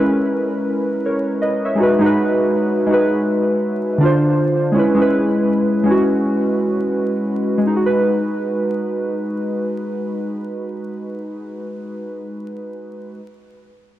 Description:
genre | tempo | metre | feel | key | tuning
hip hop | 81 BPM | 4/4 | swing 61% on 16ths | G# minor | A4 = 440 Hz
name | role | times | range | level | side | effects
warbly lo-fi synth keys | solo | 0.0-13.2 s | D3 to E5 | -16 LUFS | equal | chorus, cassette tape, low-pass filter, tape echo
room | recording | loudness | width
light reverb, digital ambience | dry, gritty hardware recording, vinyl crackle | -16 LUFS | side -13 dB against mid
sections
0.0-7.7 A section; 7.7-10.7 B section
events
none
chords
0.0 C#m7/G#; 1.8 G#m7; 4.0 Dm7; 4.7 C#m7/G#; 7.7 G#m7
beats
0.30 1.04 | 1.78 2.52 3.26 4.00 | 4.75 5.49 6.23 6.97 | 7.71 8.45 9.19 9.93

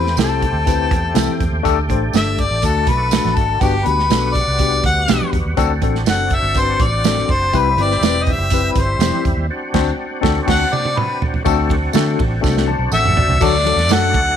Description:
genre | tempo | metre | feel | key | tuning
uptempo 1960s-style soul | 122 BPM | 4/4 | straight | unclear | A4 = 442 Hz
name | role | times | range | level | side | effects
clear harmonica | melody | 0.0-14.4 s | G4 to F#5 | -18 LUFS | left 3 dB | none
tine electric piano | accompaniment | 0.0-14.2 s | F#3 to A5 | -21 LUFS | left 11 dB | slow stereo tremolo
overdriven tonewheel organ | sustained chords | 0.0-14.4 s | G3 to G4 | -26 LUFS | right 1 dB | chorus vibrato, slow rotary speaker
vintage muted fingered electric bass | bass | 0.0-14.4 s | E1 to D3 | -20 LUFS | right 1 dB | none
natural country drum kit | drums | 0.1-14.3 s | crash cymbal, hi-hat, kick drum, ride cymbal, snare drum, toms | -20 LUFS | right 4 dB | none
congas | percussion | 0.2-14.3 s | none | -30 LUFS | right 12 dB | none
tambourine | percussion | 0.2-14.0 s | none | -31 LUFS | right 14 dB | none
room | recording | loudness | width
studio ambience | 1960s-style stereo with parts hard left and right | -14 LUFS | side -9 dB against mid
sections
0.0-11.5 A section; 11.5-13.4 B section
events
harmonica solo 0.0-11.5; band accent 9.5-11.5; drum fill 10.5-11.5, 12.4-13.4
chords
0.0 Am7; 1.7 Dsus4; 2.6 D; 3.6 Gmaj7; 5.6 D7; 7.5 Cmaj7; 9.5 D7; 13.4 D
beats
0.18 0.67 1.16 | 1.65 2.14 2.63 3.12 | 3.61 4.10 4.59 5.08 | 5.58 6.07 6.56 7.05 | 7.54 8.03 8.52 9.01 | 9.50 9.99 10.48 10.97 | 11.46 11.95 12.43 12.92 | 13.41 13.90

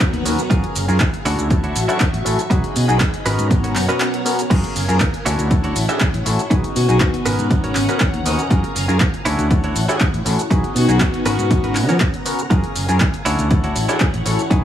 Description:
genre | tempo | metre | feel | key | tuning
filtered disco house | 120 BPM | 4/4 | straight | unclear | A4 = 440 Hz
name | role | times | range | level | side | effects
string machine, full ensemble | sustained chords | 0.0-14.6 s | B3 to C#6 | -25 LUFS | left 1 dB | ensemble chorus, sidechain pumping
direct-recorded clean electric guitar | riff | 0.0-14.6 s | C#4 to G#5 | -26 LUFS | right 3 dB | sidechain pumping
fingered electric bass | bass | 0.0-14.6 s | F#1 to E#3 | -20 LUFS | equal | sidechain pumping
electronic kick drum | drums | 0.0-14.6 s | none | -18 LUFS | equal | overdrive
punchy analog drum machine | drums | 0.0-14.6 s | crash cymbal, handclaps, hi-hat, shaker | -24 LUFS | equal | overdrive
overdriven clav | accompaniment | 0.3-14.6 s | B3 to A#5 | -24 LUFS | left 1 dB | phaser, sidechain pumping
warm horn section | melody | 5.9-14.1 s | C#4 to G#4 | -25 LUFS | left 3 dB | sidechain pumping
room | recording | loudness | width
digital ambience | none | -15 LUFS | side -10 dB against mid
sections
0.0-14.6 A section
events
clean electric guitar fill 7.5-8.5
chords
0.0 G#m11 (rootless); 0.5 F#maj9; 1.3 Dmaj9; 2.5 B6; 3.3 G#m11; 4.5 F#maj9; 5.3 Dmaj9; 6.5 B6; 7.3 G#m11; 8.5 F#maj9; 9.3 Dmaj9; 10.5 B6; 11.3 G#m11; 12.5 F#maj9; 13.3 Dmaj9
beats
0.01 | 0.51 1.01 1.51 2.01 | 2.51 3.01 3.51 4.01 | 4.51 5.01 5.51 6.01 | 6.51 7.01 7.51 8.01 | 8.51 9.01 9.51 10.01 | 10.51 11.01 11.51 12.01 | 12.51 13.01 13.51 14.01 | 14.51

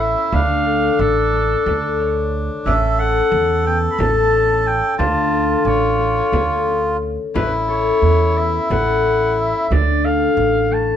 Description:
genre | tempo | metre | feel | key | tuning
contemporary instrumental, chamber music in an uneven meter | 180 BPM (eighths) | 7/8 | straight | unclear | A4 = 441 Hz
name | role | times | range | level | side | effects
warm oboe | melody | 0.0-11.0 s | A4 to B5 | -22 LUFS | right 2 dB | none
melodica | second line | 0.0-9.7 s | D4 to A4 | -21 LUFS | equal | none
concert harp | arpeggios | 0.0-11.0 s | A3 to C#5 | -19 LUFS | left 5 dB | none
upright bass | bass | 0.0-10.9 s | A1 to E2 | -21 LUFS | right 3 dB | none
frame drum | percussion | 0.3-10.0 s | none | -26 LUFS | left 2 dB | none
room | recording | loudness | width
wet studio reverb, RT60 0.7 s | dark, warm production | -15 LUFS | side -9 dB against mid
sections
0.0-11.0 A section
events
none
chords
0.3 Dm; 2.7 Aadd9; 5.0 Dm; 7.4 Aadd9; 9.7 Dm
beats
0.00 | 0.33 0.67 1.00 1.34 1.67 2.00 2.34 | 2.67 3.00 3.33 3.66 3.99 4.33 4.66 | 4.99 5.33 5.66 6.00 6.33 6.67 7.01 | 7.35 7.69 8.03 8.37 8.70 9.04 9.38 | 9.71 10.04 10.38 10.71

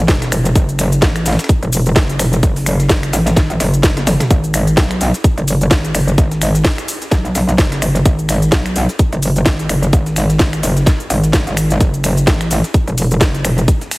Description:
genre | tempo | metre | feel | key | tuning
bass house | 128 BPM | 4/4 | swing 57% on 16ths | G# phrygian | A4 = 440 Hz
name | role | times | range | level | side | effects
metallic wobble bass | bass | 0.0-13.7 s | E1 to B1 | -14 LUFS | equal | distortion, chorus, overdrive, sidechain pumping
breakbeat sampler-style drum kit | drums | 0.1-14.0 s | hi-hat, snare drum | -28 LUFS | equal | none
electronic kick drum | drums | 0.1-13.8 s | none | -14 LUFS | equal | none
garage drum kit | drums | 0.1-14.0 s | cabasa, finger snaps, hi-hat, snare drum, toms | -19 LUFS | equal | none
room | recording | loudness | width
digital ambience | heavily compressed radio sound | -12 LUFS | side -22 dB against mid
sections
0.0-14.0 A section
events
drum fill 4.0-4.3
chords
none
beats
0.09 | 0.56 1.02 1.49 1.96 | 2.43 2.90 3.37 3.84 | 4.30 4.77 5.24 5.71 | 6.18 6.65 7.12 7.59 | 8.05 8.52 8.99 9.46 | 9.93 10.40 10.87 11.34 | 11.80 12.27 12.74 13.21 | 13.68

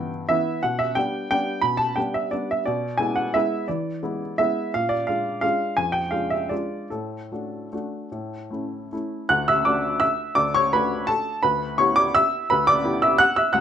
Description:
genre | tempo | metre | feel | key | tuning
classical, piano waltz | 146-188 BPM | 3/4 | rubato | D major | A4 = 437 Hz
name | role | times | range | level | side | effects
warm upright piano | solo | 0.0-13.6 s | C#2 to F#6 | -20 LUFS | equal | none
room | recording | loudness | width
light reverb | minimal, uncompressed stereo recording | -20 LUFS | side -9 dB against mid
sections
0.0-9.3 A section; 9.3-13.6 B section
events
none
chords
0.0 Em/G; 0.6 G/B; 2.7 E7/B; 4.7 Bb7; 6.9 D/A; 8.1 A; 9.3 D; 11.4 Em7/D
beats
0.29 | 0.63 0.96 1.30 | 1.62 1.97 2.33 | 2.66 3.00 3.35 | 3.69 4.03 4.39 | 4.74 5.08 5.44 | 5.78 6.13 6.51 | 6.92 7.32 7.73 | 8.12 8.52 8.92 | 9.31 9.66 10.02 | 10.37 10.72 11.07 | 11.42 11.77 12.13 | 12.48 12.82 13.17 | 13.51

